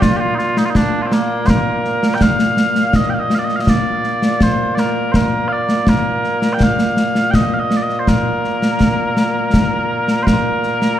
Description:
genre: scottish traditional, Scottish pipe music.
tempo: 82 BPM.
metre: 3/4.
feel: straight.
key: Bb major.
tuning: A4 = 443 Hz.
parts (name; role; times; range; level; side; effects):
mellow small bagpipes; melody; 0.0-11.0 s; Bb2 to G5; -17 LUFS; equal; slapback echo.
concert snare drum and concert bass drum; drums; 0.0-11.0 s; none; -16 LUFS; equal; none.
room: moderate concert hall reverb, RT60 2.1 s.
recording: none.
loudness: -13 LUFS.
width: side -11 dB against mid.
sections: 0.0-1.5 A section; 1.5-10.3 B section.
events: none.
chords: none.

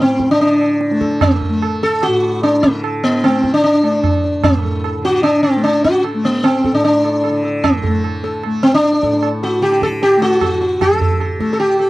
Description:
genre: indian classical, Hindustani.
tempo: 150 BPM.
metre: 4/4.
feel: straight.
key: A raga bageshri.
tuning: A4 = 436 Hz.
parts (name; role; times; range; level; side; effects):
sitar; melody; 0.0-11.9 s; A3 to A4; -13 LUFS; equal; none.
tanpura; drone; 0.0-11.9 s; A2 to A3; -23 LUFS; left 2 dB; none.
tabla; percussion; 0.0-11.9 s; none; -22 LUFS; right 4 dB; none.
room: light reverb.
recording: dry, close 1970s-style studio recording.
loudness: -13 LUFS.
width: side -18 dB against mid.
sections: 0.0-10.8 A section; 10.8-11.9 B section.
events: none.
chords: none.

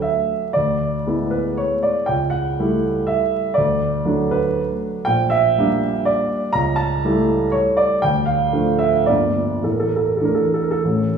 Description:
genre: classical, romantic triple-time dance for piano with dotted rhythms.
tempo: 98-131 BPM.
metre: 3/4.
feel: rubato.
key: D major.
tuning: A4 = 441 Hz.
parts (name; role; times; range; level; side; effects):
warm grand piano; solo; 0.0-11.2 s; G1 to Bb5; -17 LUFS; right 2 dB; none.
room: wet concert hall reverb, RT60 2.0 s.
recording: vinyl crackle, studio reverb.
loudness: -17 LUFS.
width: side -6 dB against mid.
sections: 0.0-11.2 A section.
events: none.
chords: 0.0 D; 0.6 E7/D; 2.1 A7/C#; 3.6 D; 5.1 Gm/Bb; 6.6 A7/C#; 8.0 Dm; 9.1 Gm7; 9.6 Asus4.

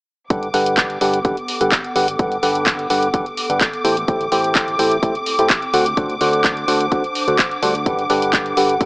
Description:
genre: piano house.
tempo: 127 BPM.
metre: 4/4.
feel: straight.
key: G major.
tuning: A4 = 440 Hz.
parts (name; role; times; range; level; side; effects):
muted studio violin section; sustained chords; 0.3-8.9 s; D6; -24 LUFS; equal; sidechain pumping.
percussive organ stab; riff; 0.3-8.9 s; D3 to G5; -18 LUFS; equal; wide subtle chorus, sidechain pumping, tape echo.
fingered electric bass; bass; 0.3-8.9 s; G1 to A2; -33 LUFS; equal; sidechain pumping.
electronic kick drum; drums; 0.3-8.9 s; none; -22 LUFS; equal; none.
house drum kit; drums; 0.3-8.9 s; handclaps, hi-hat; -20 LUFS; equal; none.
warbly tape-like pad; texture; 1.2-8.9 s; B3 to G5; -27 LUFS; equal; none.
room: light reverb.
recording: dry, gritty hardware recording, small speaker sound.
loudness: -15 LUFS.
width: side -34 dB against mid.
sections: 0.3-8.9 A section.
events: none.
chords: 0.3 Gmaj9; 3.8 Am7; 5.7 D7; 7.9 Gmaj9.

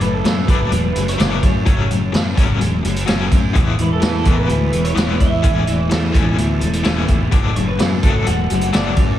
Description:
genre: indie rock.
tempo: 127 BPM.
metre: 4/4.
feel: straight.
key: unclear.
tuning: A4 = 440 Hz.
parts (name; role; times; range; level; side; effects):
electric guitar through a small old amp; melody; 0.0-9.2 s; A4 to F#5; -25 LUFS; right 2 dB; lush chorus, slapback echo, digital delay.
crunchy overdriven guitar; riff; 0.0-9.2 s; E3 to D4; -22 LUFS; left 7 dB; tremolo, slapback echo.
raw garage guitar; riff; 0.0-9.2 s; E3 to B4; -26 LUFS; right 5 dB; overdrive, analog chorus, slapback echo, digital delay.
fuzz fingered electric bass; bass; 0.0-9.2 s; E1 to F#2; -20 LUFS; equal; overdrive.
vintage drum kit; drums; 0.0-9.1 s; hi-hat, kick drum, snare drum; -17 LUFS; equal; none.
room: light reverb, small room reverb.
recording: small room ambience.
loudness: -14 LUFS.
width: side -12 dB against mid.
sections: 0.0-9.2 A section.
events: none.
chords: 0.0 D/F#; 1.7 F#m; 3.6 E; 5.4 Aadd9/E; 7.3 D/F#.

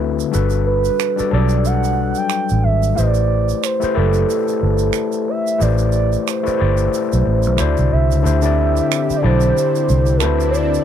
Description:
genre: R&B, neo-soul.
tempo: 91 BPM.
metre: 4/4.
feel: swing 57% on 16ths.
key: A dorian.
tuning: A4 = 440 Hz.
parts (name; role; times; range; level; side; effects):
overdriven tine electric piano; accompaniment; 0.0-10.8 s; D3 to D5; -20 LUFS; left 10 dB; none.
vintage muted fingered electric bass; bass; 0.0-10.8 s; F#1 to D2; -17 LUFS; right 1 dB; none.
tube shaker and finger snaps; percussion; 0.2-10.8 s; none; -28 LUFS; right 20 dB; none.
gliding portamento lead; melody; 0.7-10.8 s; A4 to G5; -20 LUFS; right 5 dB; chorus.
warm analog pad; sustained chords; 8.2-10.8 s; D3 to D5; -26 LUFS; right 5 dB; chorus.
room: light reverb.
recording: dry, close 1970s-style studio recording.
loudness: -14 LUFS.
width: side -9 dB against mid.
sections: 0.0-8.2 A section; 8.2-10.8 B section.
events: none.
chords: 0.3 Gmaj9; 3.0 Am9; 7.6 D9; 8.2 D9sus4; 10.2 D13.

